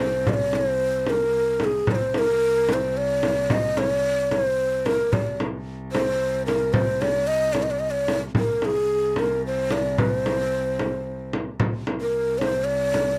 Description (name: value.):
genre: Arabic maqam ensemble.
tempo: 74 BPM (dotted quarters).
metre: 6/8.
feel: straight.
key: C maqam bayati.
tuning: A4 = 439 Hz.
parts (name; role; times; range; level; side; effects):
breathy mellow ney; melody; 0.0-13.2 s; Ab4 to Eb5; -24 LUFS; equal; none.
dark cello; drone; 0.0-13.2 s; C2; -34 LUFS; equal; none.
frame drum; percussion; 0.0-13.1 s; none; -28 LUFS; equal; none.
room: light reverb.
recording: dry, close 1970s-style studio recording.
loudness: -23 LUFS.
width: mono.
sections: 0.0-11.6 A section; 11.6-13.2 B section.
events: none.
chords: none.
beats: | 0.27 1.08 | 1.89 2.70 | 3.50 4.31 | 5.12 5.93 | 6.74 7.55 | 8.36 9.17 | 9.98 10.79 | 11.60 12.41.